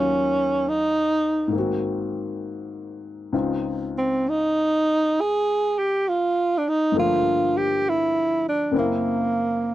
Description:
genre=jazz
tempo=67 BPM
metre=4/4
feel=swing 66% on 8ths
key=unclear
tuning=A4 = 440 Hz
part: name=breathy tenor saxophone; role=melody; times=0.0-9.7 s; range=Bb3 to Ab4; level=-20 LUFS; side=right 1 dB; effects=none
part: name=warm upright piano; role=accompaniment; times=0.0-9.7 s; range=Db2 to Gb4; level=-26 LUFS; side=left 4 dB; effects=none
room=little or no reverb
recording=dry, close 1970s-style studio recording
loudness=-20 LUFS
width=side -14 dB against mid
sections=0.0-9.7 A section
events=none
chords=0.0 Ebm9; 1.5 Ab9; 3.3 Dbmaj9; 6.9 Gm7; 8.7 Gb7#11

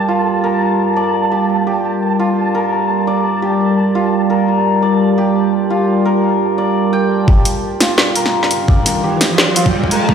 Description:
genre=half-time drum and bass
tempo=171 BPM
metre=4/4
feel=swing 56% on 16ths, half-time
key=G minor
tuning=A4 = 441 Hz
part: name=dark analog pad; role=sustained chords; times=0.0-10.1 s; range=G3 to D5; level=-16 LUFS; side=right 1 dB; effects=chorus, phaser, sidechain pumping
part: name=santur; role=arpeggios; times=0.0-10.1 s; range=F4 to G5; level=-18 LUFS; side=equal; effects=vintage 12-bit sampler grit, low-pass filter, digital delay
part: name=flickering grainy texture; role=texture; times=0.0-7.3 s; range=A5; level=-22 LUFS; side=equal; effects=built-in reverb
part: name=electronic kick drum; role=drums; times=7.3-10.1 s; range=none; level=-12 LUFS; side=equal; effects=overdrive
part: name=riser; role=sound effects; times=7.9-10.1 s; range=none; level=-19 LUFS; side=right 2 dB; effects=none
part: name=drum and bass drum kit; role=drums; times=7.5-10.0 s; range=hi-hat, snare drum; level=-14 LUFS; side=equal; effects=overdrive, high-pass filter on snare, high-pass filter on hats, high-pass filter on cymbals
room=moderate lush hall reverb, RT60 1.9 s, digital ambience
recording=played on a big sound system in a bare room, stone room reverb, high-pass filter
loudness=-12 LUFS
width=side -7 dB against mid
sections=0.0-7.3 A section; 7.3-10.1 B section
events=build-up 7.3-10.1; filter sweep on analog synth pad 7.3-10.1; riser 7.9-10.1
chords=0.0 Gm

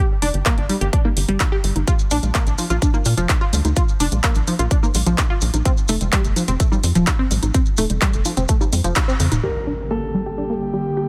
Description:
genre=progressive house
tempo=127 BPM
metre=4/4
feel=straight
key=G minor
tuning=A4 = 441 Hz
part: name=tight sequenced synth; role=arpeggios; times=0.0-11.0 s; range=F3 to G4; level=-26 LUFS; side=equal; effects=chorus, phaser, sidechain pumping, dub echo
part: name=tight sequencer bass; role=bass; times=0.2-9.4 s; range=Eb1 to Bb2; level=-22 LUFS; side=equal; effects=sidechain pumping
part: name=pop drum kit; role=drums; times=0.2-9.4 s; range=handclaps, hi-hat, toms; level=-26 LUFS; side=equal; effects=overdrive
part: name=congas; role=percussion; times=0.2-9.4 s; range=none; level=-31 LUFS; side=equal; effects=overdrive, sidechain pumping on perc
part: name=electronic kick drum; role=drums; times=0.5-9.1 s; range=none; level=-21 LUFS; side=equal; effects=none
part: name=maracas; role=percussion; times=1.9-9.4 s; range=none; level=-33 LUFS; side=equal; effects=none
part: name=dark baby grand piano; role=melody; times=9.4-10.5 s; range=A4 to Bb4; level=-31 LUFS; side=equal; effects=sidechain pumping, dub echo
part: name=airy breathy pad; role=sustained chords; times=9.4-11.1 s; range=D3 to G4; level=-27 LUFS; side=equal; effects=chorus, sidechain pumping
part: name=impact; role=sound effects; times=9.4-11.1 s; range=none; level=-32 LUFS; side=equal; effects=none
room=little or no reverb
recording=none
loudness=-19 LUFS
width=mono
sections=0.0-9.4 A section; 9.4-11.1 B section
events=band accent 9.0; drum fill 9.2; impact 9.4-11.1; filter sweep on synth arpeggio sound 9.4-11.1; filter sweep on analog synth pad 9.4-11.1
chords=0.0 Gm; 1.9 Bb; 5.7 Fadd9; 9.4 Gm

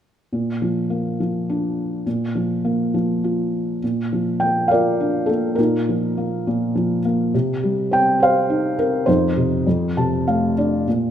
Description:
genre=classical, lyrical solo piano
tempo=102 BPM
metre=3/4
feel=rubato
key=Bb major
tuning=A4 = 439 Hz
part: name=felt-muted upright piano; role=solo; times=0.3-11.1 s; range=F2 to A5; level=-18 LUFS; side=equal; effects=none
room=moderate scoring stage reverb, RT60 1.9 s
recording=minimal, uncompressed stereo recording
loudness=-18 LUFS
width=side -9 dB against mid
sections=0.3-3.8 A section; 3.8-11.1 B section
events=felt piano fill 9.7-10.9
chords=0.3 Bb; 2.1 Bb5; 3.8 Bb; 5.6 Ebsus2/Bb; 7.3 Cm; 9.1 F5; 9.7 F6

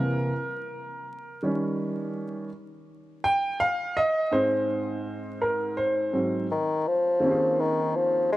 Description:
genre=hip hop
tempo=83 BPM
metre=4/4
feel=swing 64% on 16ths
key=unclear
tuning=A4 = 444 Hz
part: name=warm upright piano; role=accompaniment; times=0.0-8.4 s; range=Ab2 to G5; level=-26 LUFS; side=right 1 dB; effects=none
part: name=mellow bassoon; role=melody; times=6.5-8.4 s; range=Eb3 to Ab3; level=-23 LUFS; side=left 2 dB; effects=none
room=moderate plate reverb, RT60 3.5 s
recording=vinyl crackle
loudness=-24 LUFS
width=side -16 dB against mid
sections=0.0-7.2 A section; 7.2-8.4 B section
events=upright piano solo 0.0-7.2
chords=0.0 C7; 1.4 Eb7; 4.0 Ab; 7.2 Bbm11

